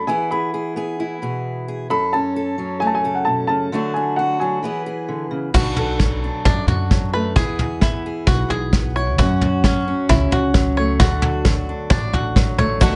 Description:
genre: indie folk with a building arrangement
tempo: 132 BPM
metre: 4/4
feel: straight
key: unclear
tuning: A4 = 442 Hz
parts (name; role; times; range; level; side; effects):
- dark upright piano; melody; 0.0-5.3 s; F#5 to B5; -24 LUFS; equal; none
- fingerpicked steel-string acoustic guitar; accompaniment; 0.0-13.0 s; F#2 to A4; -26 LUFS; equal; none
- bluegrass banjo; arpeggios; 5.5-13.0 s; C#4 to C#5; -26 LUFS; equal; slapback echo
- upright bass; bass; 5.5-13.0 s; A1 to F#2; -26 LUFS; equal; none
- soft brush drum kit; drums; 5.5-12.9 s; crash cymbal, kick drum, snare drum, toms; -20 LUFS; equal; none
- picked twelve-string acoustic guitar; accompaniment; 12.8-13.0 s; B2 to A4; -22 LUFS; equal; none
- egg shaker; percussion; 12.8-12.9 s; none; -39 LUFS; equal; none
room: light reverb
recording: nothing above 10.4 kHz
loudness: -19 LUFS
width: mono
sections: 0.0-5.5 A section; 5.5-13.0 B section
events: build-up 5.5-13.0; drum fill 5.5-13.0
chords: 0.1 E; 1.9 F#m; 3.7 D; 4.6 E; 5.5 Bm7; 7.4 E; 9.2 F#m; 11.0 D

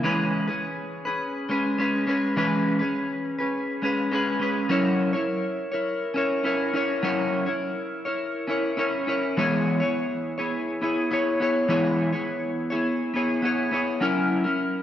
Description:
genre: indie pop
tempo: 103 BPM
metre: 4/4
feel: straight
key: E lydian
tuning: A4 = 440 Hz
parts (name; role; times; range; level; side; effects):
- clean electric guitar; solo; 0.0-14.8 s; E3 to C#5; -23 LUFS; left 1 dB; lush chorus, warbly pitch drift
room: moderate concert hall reverb, RT60 2.0 s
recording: cassette tape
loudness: -23 LUFS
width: side -11 dB against mid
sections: 0.0-14.8 A section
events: none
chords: 0.0 E6; 4.7 F#7; 9.4 E6; 14.0 F#7

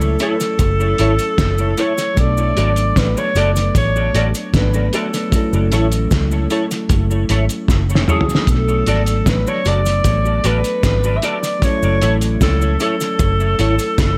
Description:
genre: lovers rock reggae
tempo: 76 BPM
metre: 4/4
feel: straight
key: F# minor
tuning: A4 = 442 Hz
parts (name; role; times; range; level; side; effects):
- warm alto saxophone; melody; 0.0-14.2 s; G#4 to E5; -23 LUFS; equal; tape echo
- mellow tine electric piano; accompaniment; 0.0-14.2 s; F#3 to A4; -26 LUFS; equal; subtle chorus
- vintage muted fingered electric bass; bass; 0.0-14.2 s; F#1 to C#2; -20 LUFS; equal; none
- cabasa; percussion; 0.0-14.2 s; none; -36 LUFS; equal; none
- semi-hollow electric guitar; stabs; 0.2-13.7 s; E4 to D5; -26 LUFS; equal; ensemble chorus, tape echo
- cloth-damped thuddy drum kit; drums; 0.2-14.2 s; hi-hat, kick drum, snare drum, toms; -21 LUFS; equal; gated reverb, tape echo
room: light reverb, small room ambience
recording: none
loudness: -16 LUFS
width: mono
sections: 0.0-14.2 A section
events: drum fill 7.7-8.5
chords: 0.0 F#m7; 2.2 Bm7; 5.3 F#m7; 8.5 Bm7; 11.6 F#m7

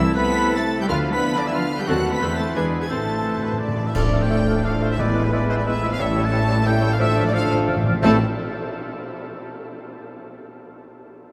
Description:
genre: classical, dramatic, fast romantic movement for symphony orchestra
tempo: 165-186 BPM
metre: 3/4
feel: rubato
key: A minor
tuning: A4 = 440 Hz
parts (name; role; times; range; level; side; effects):
- rich studio violin section; melody; 0.0-8.2 s; B4 to B6; -34 LUFS; equal; none
- bright clarinet; second line; 0.0-8.2 s; D4 to D5; -34 LUFS; equal; none
- clear oboe; second line; 0.0-8.2 s; D4 to A5; -33 LUFS; equal; none
- large flute ensemble; second line; 0.0-8.2 s; D5 to F6; -35 LUFS; equal; none
- rich symphonic viola section; accompaniment; 0.0-8.2 s; A3 to C5; -34 LUFS; equal; none
- clear trombone section; sustained chords; 0.0-8.2 s; C3 to B3; -32 LUFS; equal; none
- mellow French horn section; sustained chords; 0.0-8.2 s; A3 to A4; -31 LUFS; equal; none
- concert harp; arpeggios; 0.0-8.2 s; A2 to D6; -34 LUFS; equal; none
- clear trumpet; stabs; 0.0-8.2 s; A4 to D5; -34 LUFS; equal; none
- rich symphonic cello section; bass; 0.0-8.2 s; A2 to B3; -30 LUFS; equal; none
- rich symphonic double bass section; bass; 0.0-8.2 s; A1 to E2; -27 LUFS; equal; none
- warm symphonic violin section; second line; 0.2-8.2 s; E4 to B5; -36 LUFS; equal; none
- timpani; percussion; 2.9-8.2 s; A2; -31 LUFS; equal; none
- warm bassoon; accompaniment; 4.0-8.2 s; F3 to A3; -35 LUFS; equal; none
- clash cymbals, concert bass drum and tam-tam; percussion; 4.0-4.6, 8.0-9.4 s; none; -35 LUFS; equal; none
room: wet huge ambient reverb, RT60 9.6 s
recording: in a vast, echoing space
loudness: -21 LUFS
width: mono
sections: 0.0-4.0 A section; 4.0-8.0 B section; 8.0-9.1 C section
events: timpani fill 2.9-4.0, 7.0-8.0; band accent 4.0-4.3, 8.0-8.4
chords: 0.0 Am/C; 0.9 Bdim/D; 1.9 D#dim7; 2.2 Am/E; 2.6 E7; 2.9 Am; 4.0 Dm/A; 5.0 E/A; 6.0 A7; 7.0 Dm/A; 8.0 Am

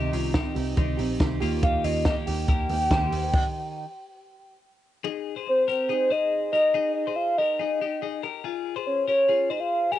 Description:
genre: jangly indie pop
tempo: 141 BPM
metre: 4/4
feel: straight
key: Ab major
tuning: A4 = 436 Hz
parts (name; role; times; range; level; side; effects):
- hollow clarinet-like synth lead; melody; 0.0-10.0 s; C5 to Ab5; -24 LUFS; equal; chorus, cassette tape
- picked steel-string acoustic guitar; accompaniment; 0.0-3.8 s; C3 to G4; -30 LUFS; right 9 dB; none
- twelve-string electric guitar; arpeggios; 0.0-10.0 s; Bb3 to C5; -31 LUFS; left 13 dB; spring reverb
- vintage muted picked electric bass; bass; 0.0-3.3 s; Bb1 to Eb2; -30 LUFS; equal; none
- compact cocktail drum kit; drums; 0.1-3.4 s; crash cymbal, hi-hat, kick drum, snare drum; -26 LUFS; equal; cassette tape
room: little or no reverb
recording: home recording on cassette, nothing above 10.5 kHz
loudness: -22 LUFS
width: side -12 dB against mid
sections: 0.0-5.0 A section; 5.0-10.0 B section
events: stop 3.3-5.0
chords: 0.0 Cm; 1.4 Eb; 5.0 Ab; 8.4 Bbm7

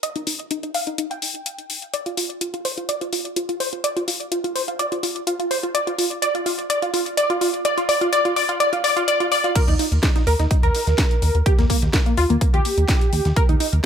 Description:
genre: progressive house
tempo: 126 BPM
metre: 4/4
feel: straight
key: unclear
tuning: A4 = 441 Hz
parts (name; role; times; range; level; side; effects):
- tight sequenced synth; arpeggios; 0.0-13.7 s; Bb3 to G5; -21 LUFS; equal; chorus, sidechain pumping, tape echo
- house drum kit; drums; 0.0-13.8 s; crash cymbal, hi-hat, snare drum; -26 LUFS; left 2 dB; overdrive, high-pass filter on hats, high-pass filter on cymbals, high-pass filter on snare
- dusty soul sampler-style drum kit; drums; 9.6-13.7 s; hi-hat, snare drum; -35 LUFS; right 1 dB; none
- electronic kick drum; drums; 9.6-13.5 s; none; -18 LUFS; equal; none
- plucky analog bass; bass; 9.7-13.8 s; Eb2; -19 LUFS; equal; sidechain pumping
room: moderate digital room reverb, RT60 1.0 s, digital ambience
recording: none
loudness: -18 LUFS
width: side -8 dB against mid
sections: 0.0-9.6 A section; 9.6-13.9 B section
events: build-up 0.0-9.6; filter sweep on synth arpeggio sound 0.0-9.6; drop 9.6-13.9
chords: 0.0 Eb; 1.9 N.C.; 9.6 Eb

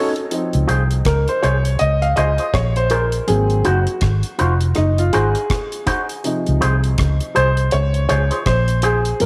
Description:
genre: lovers rock reggae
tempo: 81 BPM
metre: 4/4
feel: swing 60% on 16ths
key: unclear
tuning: A4 = 440 Hz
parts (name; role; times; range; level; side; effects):
- warm baby grand piano; accompaniment; 0.0-9.3 s; C3 to F5; -22 LUFS; equal; none
- electric guitar with an envelope filter; stabs; 0.0-9.0 s; Eb4 to C5; -26 LUFS; equal; spring reverb
- deep reggae drum kit; drums; 0.2-9.3 s; hi-hat, kick drum, rim click; -27 LUFS; equal; none
- vintage muted fingered electric bass; bass; 0.5-9.3 s; F1 to Db2; -20 LUFS; equal; none
room: light reverb, small room reverb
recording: none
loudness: -18 LUFS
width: mono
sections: 0.3-9.3 A section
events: grand piano solo 0.3-9.3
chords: 0.3 Dbmaj7; 3.3 Ab7; 6.2 Dbmaj7

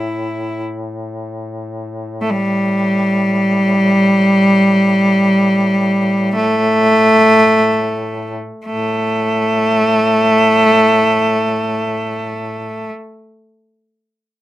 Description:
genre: caucasian folk, Caucasian lament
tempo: free time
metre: none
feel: none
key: unclear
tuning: A4 = 441 Hz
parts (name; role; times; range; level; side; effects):
- bright cello; melody; 0.0-12.9 s; G3 to E4; -12 LUFS; equal; none
- mellow duduk; drone; 0.0-12.9 s; A2; -26 LUFS; left 2 dB; none
room: moderate studio reverb, RT60 0.5 s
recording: rough home demo mix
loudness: -11 LUFS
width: side -14 dB against mid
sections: 0.0-8.7 A section; 8.7-13.3 B section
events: slowing down 0.0-8.7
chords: none

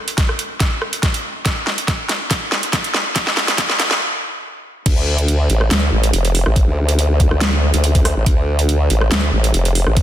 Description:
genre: heavy wobble dubstep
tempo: 141 BPM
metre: 4/4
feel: half-time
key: D minor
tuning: A4 = 439 Hz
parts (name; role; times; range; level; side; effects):
- dubstep drum kit; drums; 0.1-10.0 s; crash cymbal, hi-hat, rim click, snare drum; -19 LUFS; equal; high-pass filter on hats, studio reverb, high-pass filter on toms, high-pass filter on snare, high-pass filter on cymbals
- electronic kick drum; drums; 0.2-10.0 s; none; -16 LUFS; equal; studio reverb
- formant-sweep wobble bass; bass; 4.9-10.0 s; F1 to D2; -15 LUFS; equal; chorus, overdrive
room: light reverb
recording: dense, heavily limited modern master, high-pass filter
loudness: -14 LUFS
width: side -11 dB against mid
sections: 0.0-4.9 A section; 4.9-10.0 B section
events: build-up 0.0-4.9; drum fill 0.0-4.0; filter sweep 0.0-4.9; stop 4.0-4.9; drop 4.9-10.0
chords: none

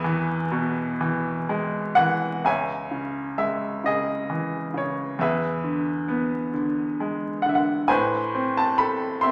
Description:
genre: classical, lyrical solo piano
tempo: 41-45 BPM (dotted quarters)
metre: 6/8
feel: rubato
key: C# minor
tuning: A4 = 440 Hz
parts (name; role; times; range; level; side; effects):
- bright upright piano; solo; 0.0-9.3 s; C#2 to C6; -25 LUFS; equal; none
room: wet recital hall reverb, RT60 1.5 s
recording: vinyl crackle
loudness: -25 LUFS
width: mono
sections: 0.0-2.5 A section; 2.5-9.3 B section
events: none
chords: 0.0 E; 2.5 C#m; 5.2 E7; 7.9 Amadd9

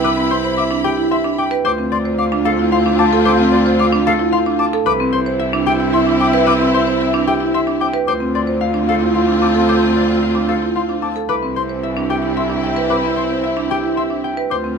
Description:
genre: classical, minimalist pattern music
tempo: 112 BPM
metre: 3/4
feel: straight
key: C major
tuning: A4 = 440 Hz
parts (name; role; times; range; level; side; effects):
- concert harp; melody; 0.0-14.8 s; G4 to A5; -22 LUFS; left 6 dB; none
- mellow alto flute; second line; 0.0-14.8 s; E4 to F4; -21 LUFS; right 5 dB; none
- rich symphonic string section; sustained chords; 0.0-14.8 s; C4 to B5; -23 LUFS; left 3 dB; none
- hollow concert flute; arpeggios; 0.0-14.6 s; F5 to D6; -21 LUFS; left 4 dB; none
- marimba with hard mallets; arpeggios; 0.0-14.8 s; C4 to C5; -20 LUFS; right 4 dB; none
- rich cello; bass; 0.0-14.8 s; C2 to D2; -21 LUFS; right 1 dB; none
room: light reverb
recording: minimal, uncompressed stereo recording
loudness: -14 LUFS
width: side -6 dB against mid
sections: 0.0-14.8 A section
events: none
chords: 0.0 Cmaj7; 1.6 Dm7; 4.9 Cmaj7; 8.1 Dm7; 11.3 Cmaj7

